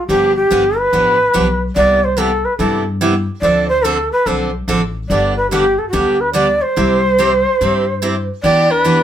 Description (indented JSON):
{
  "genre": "country, western swing",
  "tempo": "144 BPM",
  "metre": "4/4",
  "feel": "swing 68% on 8ths",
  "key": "C major",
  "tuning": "A4 = 438 Hz",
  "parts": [
    { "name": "mellow shakuhachi", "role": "melody", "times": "0.0-9.0 s", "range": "F#4 to D5", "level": "-14 LUFS", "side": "equal", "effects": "none" },
    { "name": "picked steel-string acoustic guitar", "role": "accompaniment", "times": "0.1-9.0 s", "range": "C3 to A4", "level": "-18 LUFS", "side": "right 2 dB", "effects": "none" },
    { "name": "upright bass", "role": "bass", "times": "0.1-9.0 s", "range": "G1 to G2", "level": "-21 LUFS", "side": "left 1 dB", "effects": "none" },
    { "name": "clear fiddle", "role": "second line", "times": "8.4-9.0 s", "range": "D4 to G4", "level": "-19 LUFS", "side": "right 3 dB", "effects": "none" }
  ],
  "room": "moderate studio reverb, RT60 0.5 s",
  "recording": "band playing live in one room",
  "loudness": "-12 LUFS",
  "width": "side -10 dB against mid",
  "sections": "0.0-9.0 A section",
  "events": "none",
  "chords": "0.1 G7; 1.8 Cmaj7; 3.4 Dm7; 5.1 G; 6.8 C; 8.4 Em7",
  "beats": "| 0.09 0.51 0.92 1.34 | 1.76 2.17 2.59 3.01 | 3.43 3.84 4.26 4.68 | 5.10 5.51 5.93 6.35 | 6.77 7.18 7.60 8.02 | 8.44 8.85"
}